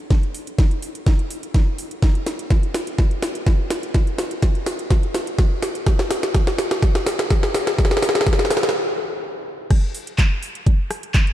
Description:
house; 125 BPM; 4/4; straight
electronic kick drum; drums; 0.1-11.2 s; -17 LUFS; equal; overdrive
house drum kit; drums; 0.1-11.3 s; crash cymbal, handclaps, hi-hat, rim click, snare drum; -22 LUFS; equal; sidechain pumping on hats, sidechain pumping on cymbals
moderate church reverb, RT60 3.5 s; dreamy mix soaked in reverb; -18 LUFS; side -12 dB against mid
0.0-9.7 A section; 9.7-11.3 B section
build-up 0.0-9.7; drum fill 0.0-8.7; stop 8.7-9.7; drop 9.7-11.3
| 0.10 0.58 1.06 1.54 | 2.02 2.50 2.98 3.46 | 3.94 4.42 4.91 5.38 | 5.87 6.34 6.83 7.30 | 7.79 8.27 8.74 9.22 | 9.71 10.19 10.66 11.14

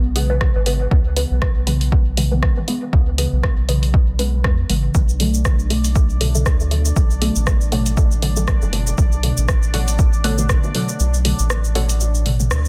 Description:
dub techno; 119 BPM; 4/4; swing 56% on 16ths; A4 = 442 Hz
soft dub sub bass; bass; 0.0-12.7 s; F#1 to E2; -22 LUFS; equal; sidechain pumping
filtered dub chord stab; stabs; 0.2-12.6 s; B2 to B3; -26 LUFS; equal; phaser, sidechain pumping, dub echo
deep house drum kit; drums; 0.2-12.7 s; hi-hat, rim click, shaker; -27 LUFS; equal; soft clipping on snare
electronic kick drum; drums; 0.4-10.6 s; -19 LUFS; equal
bubbling stepped-filter texture; texture; 4.9-12.7 s; D4 to D5; -35 LUFS; equal; chorus, built-in reverb, sidechain pumping
filtered dub chord stab; riff; 5.7-11.9 s; A4 to F#5; -34 LUFS; equal; phaser, subtle chorus, sidechain pumping, dub echo
light reverb, digital ambience; dense, heavily limited modern master; -18 LUFS; mono
0.0-12.7 A section
filter sweep on synth stab 0.0-12.7; kick drops out 11.0-12.7; band accent 12.5
0.0 C#m7; 4.9 Bm7
0.41 | 0.91 1.42 1.92 2.43 | 2.93 3.44 3.94 4.44 | 4.95 5.45 5.96 6.46 | 6.96 7.47 7.97 8.48 | 8.98 9.48 9.99 10.49 | 11.00 11.50 12.01 12.51

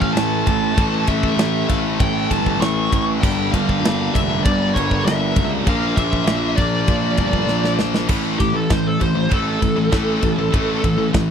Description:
heavy metal; 98 BPM; 4/4; straight; A phrygian dominant; A4 = 436 Hz
high-gain lead guitar; melody; 0.0-11.1 s; G4 to C#6; -23 LUFS; right 1 dB; distortion
muted studio string section; sustained chords; 0.0-8.1 s; E3 to Bb4; -33 LUFS; equal
heavy high-gain guitar; riff; 0.0-11.3 s; G2 to Bb3; -23 LUFS; left 15 dB; distortion
scooped high-gain guitar; riff; 0.0-11.3 s; G2 to Bb3; -24 LUFS; right 15 dB; distortion
fuzz picked electric bass; bass; 0.0-11.3 s; F1 to C#2; -23 LUFS; equal; overdrive
modern studio drum kit; drums; 0.0-11.3 s; crash cymbal, kick drum, ride cymbal, snare drum; -21 LUFS; equal
little or no reverb; dry, close 1970s-style studio recording; -16 LUFS; side -7 dB against mid
0.0-8.1 A section; 8.1-11.3 B section
drum fill 7.5-8.1; lead electric guitar solo 8.1-11.3
0.0 A; 3.2 Gm; 5.7 Bb; 8.1 A5
0.16 | 0.77 1.38 2.00 2.61 | 3.22 3.83 4.44 5.05 | 5.66 6.27 6.88 7.49 | 8.10 8.70 9.31 9.92 | 10.52 11.13

